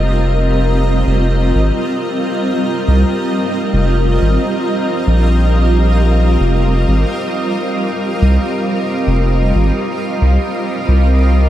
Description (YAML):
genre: ambient dub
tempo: 90 BPM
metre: 4/4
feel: swing 56% on 16ths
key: unclear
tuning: A4 = 440 Hz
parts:
  - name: granular cloud pad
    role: sustained chords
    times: 0.0-11.5 s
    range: G3 to Eb5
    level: -16 LUFS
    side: equal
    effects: built-in reverb
  - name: soft dub sub bass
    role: bass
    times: 0.0-11.5 s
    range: F1 to C2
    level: -12 LUFS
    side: equal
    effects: none
room: light reverb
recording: vinyl crackle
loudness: -12 LUFS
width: side -12 dB against mid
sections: 0.0-11.5 A section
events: none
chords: 0.0 F7(no3)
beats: | 0.55 1.22 1.88 2.55 | 3.22 3.88 4.55 5.22 | 5.88 6.55 7.22 7.88 | 8.55 9.22 9.88 10.55 | 11.22